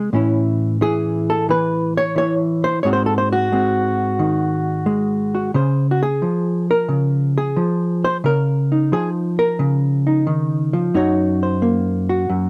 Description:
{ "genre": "solo jazz", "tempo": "89 BPM", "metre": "4/4", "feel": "swing 69% on 8ths", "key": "Db major from 5.5 s", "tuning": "A4 = 440 Hz", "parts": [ { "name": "hollow-body jazz guitar", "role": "solo", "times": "0.0-12.5 s", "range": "Gb2 to C#5", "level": "-19 LUFS", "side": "equal", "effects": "none" } ], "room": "light reverb", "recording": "dry, close 1970s-style studio recording", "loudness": "-19 LUFS", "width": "mono", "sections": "0.0-5.5 A section; 5.5-12.5 B section", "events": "none", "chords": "0.1 Amaj7; 2.8 G#7; 5.5 Dbmaj7; 8.2 Db69; 10.9 Gb6", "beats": "| 0.13 0.81 1.48 2.16 | 2.84 3.51 4.19 4.86 | 5.54 6.21 6.89 7.57 | 8.24 8.92 9.59 10.27 | 10.94 11.61 12.29" }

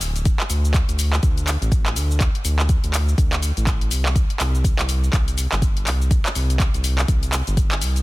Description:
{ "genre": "afro house", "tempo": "123 BPM", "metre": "4/4", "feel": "swing 60% on 16ths", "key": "unclear", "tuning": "A4 = 440 Hz", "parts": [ { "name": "round analog bass", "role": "bass", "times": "0.0-8.0 s", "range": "D1 to D2", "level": "-21 LUFS", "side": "equal", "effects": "sidechain pumping" }, { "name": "afro-pop drum kit", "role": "drums", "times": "0.0-8.0 s", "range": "handclaps, hi-hat, shaker", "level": "-24 LUFS", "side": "equal", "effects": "none" }, { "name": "electronic kick drum", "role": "drums", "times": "0.3-7.7 s", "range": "none", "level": "-20 LUFS", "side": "equal", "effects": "none" } ], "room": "little or no reverb", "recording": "dense, heavily limited modern master", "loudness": "-17 LUFS", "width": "side -19 dB against mid", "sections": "0.0-8.0 A section", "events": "none", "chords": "none", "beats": "| 0.25 0.74 1.23 1.72 | 2.21 2.69 3.18 3.67 | 4.16 4.64 5.13 5.62 | 6.11 6.59 7.08 7.57" }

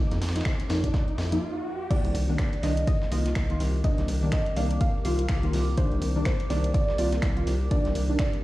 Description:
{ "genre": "deep house", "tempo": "124 BPM", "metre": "4/4", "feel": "swing 58% on 16ths", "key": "C minor", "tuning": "A4 = 439 Hz", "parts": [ { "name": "hollow soft pad", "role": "sustained chords", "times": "0.1-8.4 s", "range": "Bb3 to Bb4", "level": "-40 LUFS", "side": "equal", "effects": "chorus, sidechain pumping" }, { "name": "deep mellow chord stab", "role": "stabs", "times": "0.0-8.2 s", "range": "Eb3 to F4", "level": "-31 LUFS", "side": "equal", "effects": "ensemble chorus, sidechain pumping, analog delay" }, { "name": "riser", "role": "sound effects", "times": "0.0-1.9 s", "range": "none", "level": "-37 LUFS", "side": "equal", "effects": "none" }, { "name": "string machine, violins", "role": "texture", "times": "0.0-1.4 s", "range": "D6", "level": "-51 LUFS", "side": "right 1 dB", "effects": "none" }, { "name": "warbly tape-like pad", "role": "texture", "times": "0.7-8.4 s", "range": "Eb3 to D6", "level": "-42 LUFS", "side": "left 1 dB", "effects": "chorus, built-in reverb, sidechain pumping" }, { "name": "rubbery square bass", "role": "bass", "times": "0.1-8.2 s", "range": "C2 to F2", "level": "-27 LUFS", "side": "equal", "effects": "sidechain pumping" }, { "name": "breakbeat sampler-style drum kit", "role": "drums", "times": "0.1-8.3 s", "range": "hi-hat, ride cymbal, snare drum", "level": "-42 LUFS", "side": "right 1 dB", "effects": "high-pass filter on cymbals, high-pass filter on snare, high-pass filter on hats" }, { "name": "punchy analog drum machine", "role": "drums", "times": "0.1-8.4 s", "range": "crash cymbal, finger snaps, hi-hat", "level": "-39 LUFS", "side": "equal", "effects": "none" }, { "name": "shekere", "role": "percussion", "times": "0.1-1.4 s", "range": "none", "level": "-45 LUFS", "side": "left 2 dB", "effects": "none" }, { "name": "electronic kick drum", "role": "drums", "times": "0.5-8.3 s", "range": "none", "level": "-27 LUFS", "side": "equal", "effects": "none" }, { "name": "soft round pluck", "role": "melody", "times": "1.9-8.4 s", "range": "C5 to F5", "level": "-34 LUFS", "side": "right 1 dB", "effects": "wide subtle chorus, analog delay" } ], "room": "light reverb, digital ambience", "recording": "played on a big sound system in a bare room, cassette tape, large studio reverb", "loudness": "-23 LUFS", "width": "side -17 dB against mid", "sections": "0.0-1.9 A section; 1.9-8.4 B section", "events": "riser 0.0-1.9; filter sweep on synth stab 0.0-1.9; stop 1.4-1.9; drop 1.9-8.4", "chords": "0.0 F7sus4; 1.9 Cm9", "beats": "0.45 0.94 1.42 | 1.91 2.39 2.87 3.36 | 3.84 4.33 4.81 5.29 | 5.78 6.26 6.75 7.23 | 7.71 8.20" }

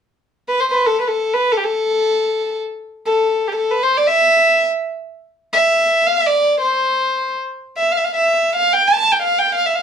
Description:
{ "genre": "klezmer", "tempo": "free time", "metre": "none", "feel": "none", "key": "A minor", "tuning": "A4 = 440 Hz", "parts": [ { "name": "rich violin", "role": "solo", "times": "0.5-9.8 s", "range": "G4 to A5", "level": "-14 LUFS", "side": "equal", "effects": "slapback echo" } ], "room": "moderate studio reverb, RT60 0.6 s", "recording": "none", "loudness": "-14 LUFS", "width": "side -7 dB against mid", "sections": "0.1-9.8 A section", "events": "none", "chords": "none", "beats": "free time" }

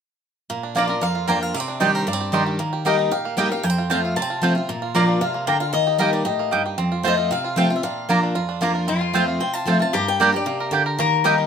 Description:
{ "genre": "bluegrass", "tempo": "229 BPM", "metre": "4/4", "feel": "straight", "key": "Bb major", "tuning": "A4 = 440 Hz", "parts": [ { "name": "bluegrass banjo", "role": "melody", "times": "0.5-11.5 s", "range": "Bb3 to Bb4", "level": "-27 LUFS", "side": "right 6 dB", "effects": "none" }, { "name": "picked steel-string acoustic guitar", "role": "accompaniment", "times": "0.5-11.5 s", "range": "F2 to G4", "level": "-23 LUFS", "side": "equal", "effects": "none" }, { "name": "picked swing-style acoustic guitar", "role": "melody", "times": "0.8-11.5 s", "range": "C5 to Bb5", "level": "-25 LUFS", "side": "left 6 dB", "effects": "none" }, { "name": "mandolin", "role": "stabs", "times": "0.8-11.3 s", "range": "Bb3 to C6", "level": "-21 LUFS", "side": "right 4 dB", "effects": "none" }, { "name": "lap resonator guitar", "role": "second line", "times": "8.9-11.5 s", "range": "F4 to Bb4", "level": "-24 LUFS", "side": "left 8 dB", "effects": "none" } ], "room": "moderate studio reverb, RT60 0.6 s", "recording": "minimal, uncompressed stereo recording", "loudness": "-18 LUFS", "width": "side -7 dB against mid", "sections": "0.5-11.5 A section", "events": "none", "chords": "0.5 Bb; 1.5 Cmadd9; 2.6 Eb; 3.6 F; 4.7 Bb; 5.7 Eb; 6.8 F; 7.8 Bb; 8.9 F; 9.9 Gm", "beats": "| 0.50 0.76 1.02 1.28 | 1.55 1.81 2.07 2.33 | 2.59 2.85 3.12 3.38 | 3.64 3.90 4.17 4.43 | 4.69 4.95 5.21 5.48 | 5.74 6.00 6.26 6.53 | 6.79 7.05 7.31 7.58 | 7.84 8.10 8.36 8.62 | 8.89 9.15 9.41 9.68 | 9.94 10.20 10.46 10.73 | 10.99 11.25" }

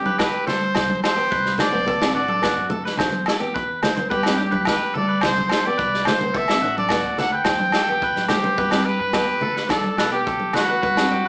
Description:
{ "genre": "highlife guitar band", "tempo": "107 BPM", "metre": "4/4", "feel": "straight", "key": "G major", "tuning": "A4 = 440 Hz", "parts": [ { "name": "bright trumpet", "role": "melody", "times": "0.0-11.3 s", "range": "F#4 to G5", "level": "-22 LUFS", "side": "equal", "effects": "none" }, { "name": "nylon-string guitar", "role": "accompaniment", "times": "0.0-11.3 s", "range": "A3 to D4", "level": "-28 LUFS", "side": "equal", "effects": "none" }, { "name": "upright bass", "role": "bass", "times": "0.0-11.3 s", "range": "A1 to G3", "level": "-30 LUFS", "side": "equal", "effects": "none" }, { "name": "electric guitar at the edge of break-up", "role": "arpeggios", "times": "0.1-11.3 s", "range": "F#4 to D5", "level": "-25 LUFS", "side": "equal", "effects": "none" }, { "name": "congas", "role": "percussion", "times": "0.1-10.7 s", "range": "none", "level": "-30 LUFS", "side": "equal", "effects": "none" }, { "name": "crunchy breakbeat drum kit", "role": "drums", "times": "0.2-11.1 s", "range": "kick drum, snare drum", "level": "-24 LUFS", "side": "equal", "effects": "none" }, { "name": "agogo bells", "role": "percussion", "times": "0.2-11.1 s", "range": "none", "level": "-27 LUFS", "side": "equal", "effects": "none" } ], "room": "wet large studio reverb, RT60 1.0 s", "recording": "band playing live in one room, small speaker sound", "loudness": "-18 LUFS", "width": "side -30 dB against mid", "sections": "0.0-8.6 A section; 8.6-11.3 B section", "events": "none", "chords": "0.0 G; 0.8 C; 1.9 D; 3.0 C/E; 4.1 G; 5.2 C; 6.3 D; 7.5 C/E; 8.6 G6", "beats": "0.20 0.76 1.32 | 1.88 2.44 3.00 3.55 | 4.11 4.67 5.23 5.79 | 6.35 6.91 7.46 8.02 | 8.58 9.14 9.70 10.27 | 10.83" }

